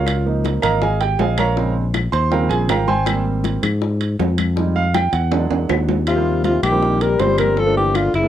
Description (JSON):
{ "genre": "Afro-Cuban jazz", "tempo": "160 BPM", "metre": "4/4", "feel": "straight", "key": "Eb major", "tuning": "A4 = 442 Hz", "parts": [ { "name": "warm baby grand piano", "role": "accompaniment", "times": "0.0-8.3 s", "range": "Db3 to C6", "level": "-21 LUFS", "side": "right 6 dB", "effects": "cassette tape" }, { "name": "fingered electric bass", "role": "bass", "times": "0.0-8.3 s", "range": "Gb1 to Ab2", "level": "-20 LUFS", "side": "left 1 dB", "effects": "none" }, { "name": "bongos", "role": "percussion", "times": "0.1-8.3 s", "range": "none", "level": "-30 LUFS", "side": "left 11 dB", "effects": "none" }, { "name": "claves", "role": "percussion", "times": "0.1-8.1 s", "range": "none", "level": "-28 LUFS", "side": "left 13 dB", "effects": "none" }, { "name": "congas", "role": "percussion", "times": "0.1-8.1 s", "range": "none", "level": "-28 LUFS", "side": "left 10 dB", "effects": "none" }, { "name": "timbales", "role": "percussion", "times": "0.1-8.3 s", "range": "none", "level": "-25 LUFS", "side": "right 9 dB", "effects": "none" }, { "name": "breathy alto saxophone", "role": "melody", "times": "6.1-8.3 s", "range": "Fb4 to C5", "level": "-18 LUFS", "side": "left 1 dB", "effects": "cassette tape" }, { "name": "warm trombone", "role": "second line", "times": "6.1-8.3 s", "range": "C3 to G3", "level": "-23 LUFS", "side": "left 8 dB", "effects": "cassette tape" } ], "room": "moderate studio reverb, RT60 0.5 s", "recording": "home recording on cassette", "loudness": "-16 LUFS", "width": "side -11 dB against mid", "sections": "0.0-6.1 A section; 6.1-8.3 B section", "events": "grand piano solo 0.0-6.1; drum fill 5.3-6.1", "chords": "0.1 Db69; 1.6 Bbm7; 2.3 Eb13; 3.1 Abmaj9; 4.6 Fm7; 5.3 E9; 6.1 Eb69; 7.6 Gm9", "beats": "| 0.07 0.44 0.82 1.19 | 1.57 1.94 2.32 2.69 | 3.07 3.44 3.81 4.19 | 4.56 4.94 5.31 5.69 | 6.07 6.44 6.82 7.19 | 7.57 7.95" }